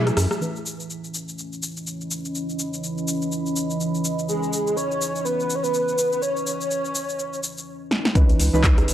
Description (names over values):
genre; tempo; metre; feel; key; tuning
deep house; 124 BPM; 4/4; swing 58% on 16ths; C# minor; A4 = 440 Hz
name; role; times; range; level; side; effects
deep mellow chord stab; stabs; 0.0-8.9 s; E3 to B4; -24 LUFS; equal; chorus, sidechain pumping, analog delay
round analog bass; bass; 0.0-0.3, 8.2-8.9 s; G#1 to B2; -22 LUFS; equal; transformer saturation, sidechain pumping
deep dark ambient pad; texture; 0.3-7.7 s; E3 to B5; -29 LUFS; equal; chorus, built-in reverb, sidechain pumping
deep house drum kit; drums; 0.1-8.9 s; handclaps, hi-hat, rim click, shaker, snare drum; -27 LUFS; left 1 dB; overdrive
breathy flute-like synth lead; melody; 4.3-7.4 s; G#4 to C#5; -24 LUFS; right 1 dB; ensemble chorus, analog delay
electronic kick drum; drums; 8.2-8.8 s; none; -17 LUFS; equal; none
room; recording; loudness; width
light reverb, digital ambience; dry, gritty hardware recording; -21 LUFS; side -11 dB against mid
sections
0.4-8.2 A section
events
break 0.0-0.4; drum fill 0.0-0.4, 7.9; band accent 0.3; filter sweep on synth stab 0.4-8.2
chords
0.4 C#m9; 7.9 N.C.; 8.2 C#m9